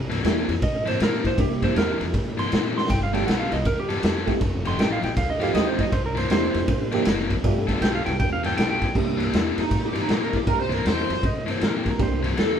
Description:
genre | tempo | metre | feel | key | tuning
electric blues shuffle | 158 BPM | 4/4 | swing 64% on 8ths | C mixolydian | A4 = 439 Hz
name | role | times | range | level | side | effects
upright bass | bass | 0.0-12.6 s | F1 to Bb2 | -30 LUFS | equal | none
overdriven electric guitar | riff | 0.1-12.6 s | C3 to A4 | -28 LUFS | left 6 dB | none
raw garage drum kit | drums | 0.1-12.5 s | crash cymbal, kick drum, ride cymbal, snare drum | -24 LUFS | equal | none
reed electric piano | accompaniment | 0.2-12.2 s | A3 to G4 | -28 LUFS | right 4 dB | phaser
clean lap steel guitar | second line | 0.6-8.9, 11.3-12.3 s | G4 to C6 | -28 LUFS | right 3 dB | none
lead guitar through a small cranked amp | melody | 9.6-12.6 s | Eb4 to C5 | -26 LUFS | right 1 dB | overdrive
room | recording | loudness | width
moderate stone room reverb, RT60 1.0 s | band playing live in one room | -20 LUFS | side -8 dB against mid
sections
0.0-9.0 A section; 9.0-12.6 B section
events
electric slide guitar solo 0.0-9.0; drum fill 2.7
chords
0.0 C9; 2.9 G9; 4.4 F9; 5.9 C9; 7.4 G9; 9.0 C9

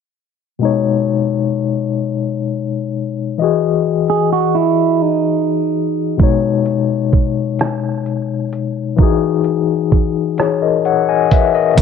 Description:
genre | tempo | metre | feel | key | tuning
slow six-eight R&B | 43 BPM (dotted quarters) | 6/8 | straight | B major | A4 = 440 Hz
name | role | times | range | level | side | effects
barky tine electric piano | accompaniment | 0.6-11.8 s | B2 to G#5 | -15 LUFS | left 9 dB | overdrive, medium tremolo
clean electric guitar | second line | 4.1-6.1 s | D#4 to G#4 | -15 LUFS | right 13 dB | slapback echo
dusty soul sampler-style drum kit | drums | 6.2-11.8 s | hi-hat, kick drum, rim click | -14 LUFS | right 2 dB | none
smooth gliding synth bass | bass | 11.8 s | B1 | -10 LUFS | right 3 dB | none
room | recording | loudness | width
moderate spring reverb, RT60 2.2 s | 1960s-style stereo with parts hard left and right, low-pass filter | -14 LUFS | side -6 dB against mid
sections
0.6-11.8 A section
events
filter sweep 0.6-11.8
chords
0.6 B69; 3.4 Emaj9; 6.2 B69; 9.0 Emaj9

